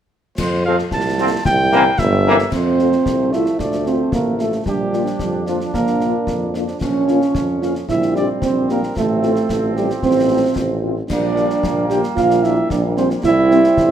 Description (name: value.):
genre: military-style march for wind band.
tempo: 112 BPM.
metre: 2/4.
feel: straight.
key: F major.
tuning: A4 = 441 Hz.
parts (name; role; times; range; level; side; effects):
mellow cornet; melody; 0.4-13.9 s; F4 to A5; -24 LUFS; equal; none.
warm tuba; bass; 0.4-13.9 s; G1 to F2; -22 LUFS; right 2 dB; none.
concert snare drum, clash cymbals and concert bass drum; drums; 0.4-13.9 s; none; -27 LUFS; left 2 dB; none.
dark French horn section; accompaniment; 0.7-13.6 s; G3 to Bb4; -24 LUFS; left 7 dB; none.
clear trombone section; sustained chords; 0.7-13.9 s; E3 to D4; -24 LUFS; right 1 dB; none.
mellow euphonium; second line; 2.5-13.9 s; F3 to G4; -17 LUFS; right 3 dB; none.
room: moderate large studio reverb, RT60 1.2 s.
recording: none.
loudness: -15 LUFS.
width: side -9 dB against mid.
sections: 0.4-2.5 A section; 2.5-13.9 B section.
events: none.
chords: 0.4 F; 1.5 C7; 2.5 F; 3.6 Dm; 4.7 Bb; 6.8 Bbm; 7.9 C5/Bb; 9.0 F/A; 11.1 Gm7/Bb; 13.2 C.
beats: | 0.39 0.92 | 1.46 1.99 | 2.53 3.06 | 3.60 4.13 | 4.67 5.21 | 5.74 6.28 | 6.81 7.35 | 7.88 8.42 | 8.96 9.49 | 10.03 10.56 | 11.10 11.63 | 12.17 12.70 | 13.24 13.77.